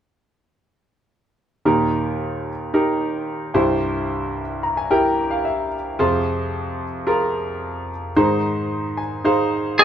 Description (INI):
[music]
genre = pop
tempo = 111 BPM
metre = 4/4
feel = straight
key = Eb major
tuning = A4 = 440 Hz
[part]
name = clear concert grand piano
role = accompaniment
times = 1.7-9.8 s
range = C2 to Bb5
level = -19 LUFS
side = equal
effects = none
[part]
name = lightly driven lead guitar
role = melody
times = 9.8 s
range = Ab4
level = -8 LUFS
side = right 1 dB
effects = none
[sound]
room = moderate studio reverb, RT60 0.5 s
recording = band playing live in one room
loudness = -19 LUFS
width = side -9 dB against mid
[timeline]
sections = 1.7-9.8 A section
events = grand piano fill 4.4-6.0, 8.7-9.8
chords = 1.7 Eb; 3.6 C; 6.0 Fm; 8.2 Ab